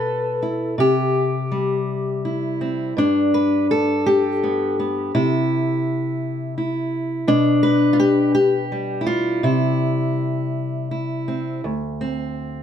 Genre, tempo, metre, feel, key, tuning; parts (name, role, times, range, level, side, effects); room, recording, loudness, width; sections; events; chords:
folk, solo fingerstyle acoustic guitar; 55 BPM (dotted quarters); 6/8; straight; A4 = 440 Hz
fingerpicked steel-string acoustic guitar; solo; 0.0-12.6 s; D2 to B4; -18 LUFS; left 1 dB
moderate studio reverb, RT60 0.6 s; dark, warm production; -18 LUFS; side -9 dB against mid
0.0-11.6 A section
0.0 B7sus4; 0.8 C; 3.0 Gadd9; 5.1 C; 7.3 G/B; 9.4 C; 11.6 D5